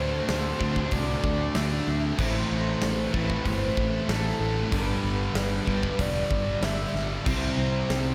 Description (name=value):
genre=rock, shoegaze and dream pop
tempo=95 BPM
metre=4/4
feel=straight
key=D mixolydian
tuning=A4 = 440 Hz
part: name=mellow horn-like synth lead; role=melody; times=0.0-8.1 s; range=A4 to E5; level=-35 LUFS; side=equal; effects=chorus, diffuse ambient delay
part: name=biting overdriven guitar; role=riff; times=0.0-8.1 s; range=G2 to D4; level=-37 LUFS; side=equal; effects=none
part: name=overdriven semi-hollow guitar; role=riff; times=0.0-8.1 s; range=G2 to F#4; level=-35 LUFS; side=equal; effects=reverse reverb
part: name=thick fuzz guitar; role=riff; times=0.0-8.1 s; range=G2 to D4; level=-34 LUFS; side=equal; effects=distortion, lush chorus
part: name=fingered electric bass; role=bass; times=0.0-8.1 s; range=E1 to D2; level=-33 LUFS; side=equal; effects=none
part: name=big rock drum kit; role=drums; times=0.3-8.0 s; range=crash cymbal, hi-hat, kick drum, snare drum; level=-34 LUFS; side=equal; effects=none
room=wet lush hall reverb, RT60 1.8 s, small room ambience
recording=dreamy mix soaked in reverb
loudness=-26 LUFS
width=mono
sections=0.0-8.1 A section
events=none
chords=0.0 D7; 2.2 Am; 4.7 G; 7.3 C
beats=0.29 0.93 1.56 | 2.19 2.82 3.46 4.09 | 4.72 5.36 5.99 6.62 | 7.26 7.89